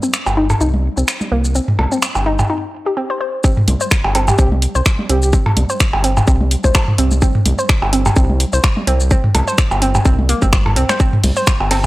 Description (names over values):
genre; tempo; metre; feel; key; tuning
minimal techno; 127 BPM; 4/4; swing 55% on 16ths; C minor; A4 = 441 Hz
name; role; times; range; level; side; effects
hollow square pluck; riff; 0.0-11.8 s; Bb3 to C5; -20 LUFS; equal; chorus, phaser, cassette tape, sidechain pumping, analog delay
garage drum kit; drums; 0.0-11.9 s; finger snaps, hi-hat, ride cymbal, shaker; -20 LUFS; equal; overdrive, small room reverb
round analog bass; bass; 0.3-11.9 s; G1 to C2; -16 LUFS; equal; sidechain pumping
electronic percussion blips and toms; percussion; 0.3-11.9 s; none; -18 LUFS; right 1 dB; small room reverb, tape echo
electronic kick drum; drums; 3.4-11.6 s; none; -14 LUFS; equal; overdrive, small room reverb
breathy flute-like synth lead; melody; 4.3-5.3, 11.8-11.9 s; G4; -23 LUFS; right 1 dB; chorus, tremolo, tape echo
room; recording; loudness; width
light reverb; dry, gritty hardware recording; -13 LUFS; side -18 dB against mid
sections
0.0-3.4 A section; 3.4-11.9 B section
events
filter sweep on synth arpeggio sound 0.0-3.4; break 2.5-3.4; drop 3.4-11.9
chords
0.0 Cm; 3.4 C5